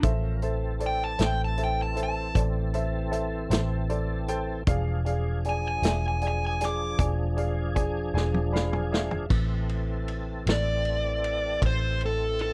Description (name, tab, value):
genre	slow blues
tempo	52 BPM (dotted quarters)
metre	12/8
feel	straight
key	A minor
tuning	A4 = 440 Hz
part	dark smooth lead guitar	melody	0.0-12.5 s	A4 to D6	-31 LUFS	equal	overdrive
part	clear upright piano	accompaniment	0.0-9.3 s	G#4 to B5	-36 LUFS	equal	none
part	tonewheel organ	sustained chords	0.0-12.5 s	E3 to Bb4	-37 LUFS	equal	slow rotary speaker, overdrive, chorus vibrato
part	vintage muted fingered electric bass	bass	0.0-12.5 s	E1 to A1	-31 LUFS	equal	none
part	vintage drum kit	drums	0.0-12.5 s	crash cymbal, hi-hat, kick drum, ride cymbal, snare drum, toms	-30 LUFS	equal	none
room	little or no reverb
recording	dry, close 1970s-style studio recording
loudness	-27 LUFS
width	mono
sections	0.0-9.3 A section; 9.3-12.5 B section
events	drum fill 8.1-9.3; upright piano fill 8.1-9.3; lead electric guitar solo 9.3-12.5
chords	0.0 Am; 4.7 E7b9; 9.3 Am